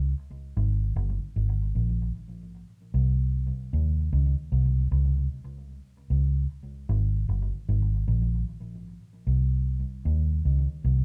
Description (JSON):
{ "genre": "reggae", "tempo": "76 BPM", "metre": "4/4", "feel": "swing 60% on 16ths", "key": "Ab major", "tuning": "A4 = 435 Hz", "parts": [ { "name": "vintage muted fingered electric bass", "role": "solo", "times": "0.0-11.0 s", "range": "G1 to Eb2", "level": "-27 LUFS", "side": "equal", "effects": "tape echo" } ], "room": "wet small room reverb, RT60 0.5 s", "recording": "rough home demo mix", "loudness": "-27 LUFS", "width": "mono", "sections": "0.0-11.0 A section", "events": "none", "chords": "none" }